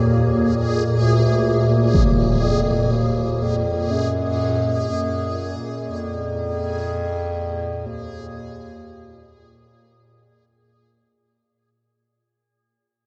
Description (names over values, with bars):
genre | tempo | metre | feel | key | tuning
dark ambient drone | free time | none | none | Eb harmonic minor | A4 = 436 Hz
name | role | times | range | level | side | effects
dark bass clarinet | melody | 0.0-9.8 s | D2 to Gb2 | -26 LUFS | equal | tape echo
organ-like drone | drone | 0.0-11.9 s | Bb2 | -24 LUFS | equal | ensemble chorus, built-in reverb
backwards swelling texture | texture | 0.0-11.8 s | Ab4 | -32 LUFS | equal | built-in reverb
impact | percussion | 1.9-2.1 s | none | -25 LUFS | equal | low-pass filter on sfx
room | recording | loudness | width
wet huge ambient reverb, RT60 7.1 s | worn, warbling old tape, cassette tape, warbly pitch drift | -21 LUFS | mono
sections
0.0-11.8 A section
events
fade-out 1.3-11.8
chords
0.0 Eb5